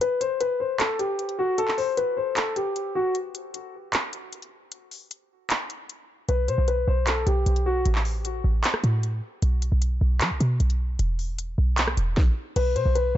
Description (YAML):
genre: hip hop, trap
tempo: 153 BPM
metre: 4/4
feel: half-time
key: unclear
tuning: A4 = 440 Hz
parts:
  - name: dark concert grand piano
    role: melody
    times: 0.0-3.1, 6.3-7.8, 12.6-13.2 s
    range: F#4 to C5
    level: -25 LUFS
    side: left 3 dB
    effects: ping-pong delay
  - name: trap drum kit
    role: drums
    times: 0.0-13.0 s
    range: crash cymbal, handclaps, hi-hat, kick drum, rim click, snare drum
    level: -26 LUFS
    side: right 1 dB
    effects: none
  - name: short 808-style bass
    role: bass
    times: 6.3-13.2 s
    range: E1 to F#3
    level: -22 LUFS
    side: equal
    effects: none
room: little or no reverb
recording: dark, warm production, nothing above 7.8 kHz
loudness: -22 LUFS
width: side -12 dB against mid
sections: 0.0-12.6 A section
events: break 0.0-6.3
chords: 0.0 N.C.; 6.3 Am9/B (rootless); 7.9 N.C.; 9.4 B5; 11.0 E5; 12.6 Amadd9/B (rootless)